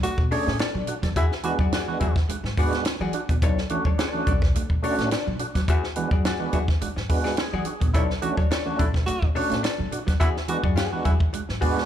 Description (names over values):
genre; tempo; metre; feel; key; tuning
funk; 106 BPM; 4/4; straight; B dorian; A4 = 441 Hz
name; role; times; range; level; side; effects
breathy tenor saxophone; second line; 0.0-2.1, 7.9-11.1 s; E4 to F#4; -32 LUFS; right 2 dB; slapback echo
hollow-body jazz guitar; accompaniment; 0.0-11.8 s; D4 to E5; -32 LUFS; left 9 dB; slapback echo
mellow electric guitar; riff; 0.0-11.8 s; E3 to B3; -34 LUFS; right 6 dB; spring reverb
percussive tonewheel organ; stabs; 0.0-11.9 s; G#3 to A4; -29 LUFS; right 3 dB; overdrive, chorus vibrato, slow rotary speaker, slapback echo
upright bass; bass; 0.0-11.7 s; A#1 to E3; -28 LUFS; equal; none
compact cocktail drum kit; drums; 0.0-11.8 s; hi-hat, kick drum, snare drum; -24 LUFS; equal; none
room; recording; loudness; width
small room ambience; live gig heard through the venue's PA, club reverb; -21 LUFS; side -10 dB against mid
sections
0.0-11.9 A section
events
tonewheel organ fill 7.1-7.9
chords
0.0 Bm9; 1.2 E9; 3.4 Bm9; 5.7 E9; 7.9 Bm9; 10.2 E9